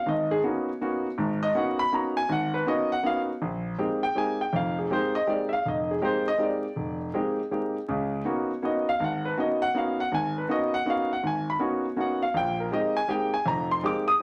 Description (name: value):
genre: jazz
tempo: 161 BPM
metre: 3/4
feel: swing 64% on 8ths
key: Bb phrygian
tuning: A4 = 440 Hz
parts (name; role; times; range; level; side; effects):
- warm concert grand piano; solo; 0.0-14.2 s; F1 to Eb6; -27 LUFS; equal; none
room: wet studio reverb, RT60 0.6 s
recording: vinyl crackle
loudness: -27 LUFS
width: mono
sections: 0.0-3.4 A section; 3.4-14.2 A section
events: none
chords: 0.0 Db13sus4; 3.4 Bb13sus4; 7.9 Db13sus4; 12.3 Bb13sus4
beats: | 0.06 0.43 0.80 | 1.18 1.55 1.92 | 2.29 2.66 3.04 | 3.41 3.78 4.15 | 4.53 4.90 5.27 | 5.64 6.01 6.39 | 6.76 7.13 7.50 | 7.88 8.25 8.62 | 8.99 9.37 9.74 | 10.11 10.48 10.85 | 11.23 11.60 11.97 | 12.34 12.71 13.09 | 13.46 13.83 14.20